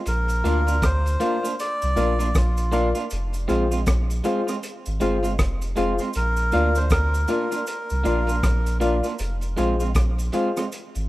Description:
roots reggae; 79 BPM; 4/4; swing 61% on 16ths; Bb mixolydian; A4 = 440 Hz
melodica; melody; 0.1-8.8 s; F4 to D5; -27 LUFS; equal; dub echo
soft dub sub bass; bass; 0.1-11.1 s; F1 to D2; -23 LUFS; equal
crunchy breakbeat drum kit; drums; 0.1-11.1 s; hi-hat, kick drum, rim click; -25 LUFS; equal
cabasa; percussion; 0.1-11.1 s; -41 LUFS; right 3 dB
electric guitar at the edge of break-up; accompaniment; 0.4-10.7 s; Ab3 to F4; -28 LUFS; right 4 dB; dub echo
barky reed electric piano; stabs; 0.4-10.6 s; F4 to F5; -27 LUFS; left 4 dB; overdrive, fast tremolo
light reverb, studio reverb; rough home demo mix; -20 LUFS; side -17 dB against mid
0.0-6.2 A section; 6.2-11.1 A section
0.1 Bb; 3.1 Fm; 6.2 Bb; 9.2 Fm

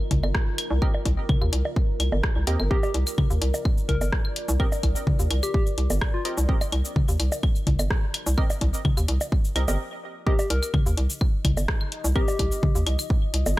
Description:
minimal techno; 127 BPM; 4/4; straight; C minor; A4 = 440 Hz
deep dark ambient pad; texture; 0.0-13.6 s; F4 to Eb5; -37 LUFS; left 1 dB; chorus, built-in reverb, sidechain pumping
hollow knocking FM bass; bass; 0.1-13.6 s; G1 to Eb2; -23 LUFS; equal; sidechain pumping
electronic kick drum; drums; 0.1-13.2 s; -23 LUFS; equal
house drum kit; drums; 0.1-13.6 s; hi-hat, rim click, shaker; -31 LUFS; left 1 dB
electronic toms, bongos and claves; percussion; 0.1-13.6 s; -29 LUFS; left 1 dB; digital delay
wavetable chord stab; stabs; 0.8-12.2 s; C4 to Eb5; -34 LUFS; right 3 dB; digital delay
soft struck synth lead; melody; 2.7-6.3, 10.3-12.8 s; F4 to Bb4; -31 LUFS; left 2 dB; chorus, digital delay
little or no reverb; -21 LUFS; side -18 dB against mid
0.0-10.3 A section; 10.3-13.6 B section
stop 9.8-10.3; drop 10.3-13.6
0.0 Cm7; 10.3 Cm

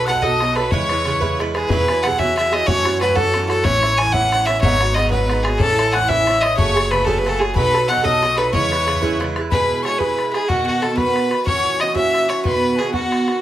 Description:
celtic folk, Celtic jig; 123 BPM (dotted quarters); 6/8; straight; E major; A4 = 440 Hz
clear fiddle; melody; 0.0-13.4 s; F#4 to G#5; -18 LUFS; equal; plate reverb
bright tin whistle; second line; 0.0-1.4, 5.6-13.4 s; F#5 to F#6; -24 LUFS; left 4 dB
Irish bouzouki; accompaniment; 0.0-13.4 s; G#2 to B4; -22 LUFS; right 4 dB
upright bass; bass; 0.0-9.5 s; F#1 to F#2; -24 LUFS; left 1 dB
bodhran; percussion; 0.1-13.3 s; -25 LUFS; left 2 dB
moderate studio reverb, RT60 0.5 s; -15 LUFS; side -12 dB against mid
0.0-1.7 A section; 1.7-9.5 A section; 9.5-13.4 B section
0.0 B7; 0.7 E6; 1.7 Eadd9; 2.7 F#m7; 3.7 A; 4.6 G#m7; 5.6 A; 6.6 F#madd9; 7.6 B7; 8.5 E6; 9.5 E; 10.5 B; 11.5 F#7; 12.4 B

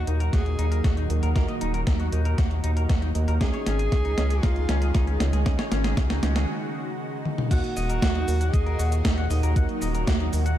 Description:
synthwave; 117 BPM; 4/4; straight; Eb minor; A4 = 440 Hz
bright alto saxophone; melody; 0.0-9.2 s; F4 to Ab4; -34 LUFS; equal; ping-pong delay
lush unison pad; sustained chords; 0.0-10.6 s; Bb2 to Ab4; -32 LUFS; equal; chorus, phaser, sidechain pumping
mellow FM electric piano; stabs; 0.0-10.4 s; Bb3 to Eb5; -36 LUFS; right 3 dB; chorus, low-pass filter, tape echo
round analog bass; bass; 0.0-10.6 s; Eb1 to Eb2; -24 LUFS; equal; sidechain pumping
clean electric guitar; arpeggios; 0.1-10.6 s; Db4 to Gb5; -35 LUFS; left 2 dB; tape echo
gated 80s digital drum machine; drums; 0.1-10.6 s; cabasa, crash cymbal, hi-hat, snare drum, toms; -30 LUFS; right 1 dB; gated reverb, gated reverb snare, overdrive
electronic kick drum; drums; 0.3-10.2 s; -24 LUFS; equal; overdrive
light reverb, digital ambience; dark, warm production; -22 LUFS; side -12 dB against mid
0.0-7.5 A section; 7.5-10.6 B section
drum fill 0.0-6.5, 7.3; filter sweep on FM electric piano 0.0-7.5; break 6.5-7.5
0.0 Ebm; 3.4 Dbsus2; 7.5 Ebm

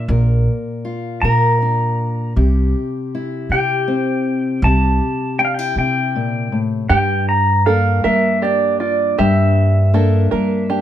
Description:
acoustic folk duo or small band; 53 BPM (dotted quarters); 6/8; straight; G dorian; A4 = 440 Hz
pedal steel guitar; melody; 0.0-10.8 s; D5 to Bb5; -18 LUFS; right 1 dB; plate reverb
fingerpicked steel-string acoustic guitar; accompaniment; 0.0-10.8 s; G2 to Bb4; -21 LUFS; left 3 dB
upright bass; bass; 0.0-10.8 s; Bb1 to G3; -17 LUFS; equal
open-back banjo; arpeggios; 6.9-10.8 s; F4 to Bb4; -22 LUFS; right 6 dB
light reverb; dark, warm production; -14 LUFS; side -11 dB against mid
0.0-6.9 A section; 6.9-10.8 B section
0.0 Bb; 2.4 C; 6.9 Gm

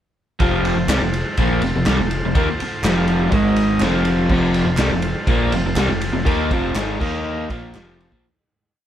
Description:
garage rock duo or trio; 123 BPM; 4/4; straight; F mixolydian; A4 = 441 Hz
combo organ; sustained chords; 0.4-8.2 s; Eb4 to Eb5; -28 LUFS; equal
crunchy overdriven guitar; riff; 0.4-8.2 s; F2 to Eb4; -19 LUFS; equal
growling picked electric bass; bass; 0.4-8.2 s; F1 to Eb2; -24 LUFS; equal; overdrive
raw garage drum kit; drums; 0.4-8.2 s; crash cymbal, kick drum, ride cymbal, snare drum; -22 LUFS; equal
group handclap; percussion; 0.9-7.9 s; -31 LUFS; right 2 dB
light reverb; band playing live in one room; -16 LUFS; side -10 dB against mid
0.4-8.2 riff
fade-out 6.3-8.2
0.4 F; 3.3 Ab5; 3.8 F; 7.0 Eb5; 7.5 F

